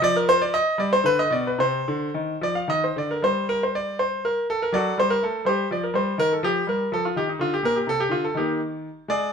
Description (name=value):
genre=classical, baroque-style suite movement for grand piano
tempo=71-85 BPM (dotted quarters)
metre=6/8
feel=rubato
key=C minor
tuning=A4 = 444 Hz
part: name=bright grand piano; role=solo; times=0.0-9.3 s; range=Bb2 to F5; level=-21 LUFS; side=equal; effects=none
room=moderate stone room reverb, RT60 1.1 s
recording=faint mains hum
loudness=-21 LUFS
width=side -6 dB against mid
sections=0.0-3.2 A section; 3.2-9.3 A section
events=none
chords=0.0 N.C.; 0.8 G; 1.6 Cm; 3.2 N.C.; 4.7 F#dim; 5.5 Fsus24; 6.2 Eb; 7.6 Bb; 8.4 Eb5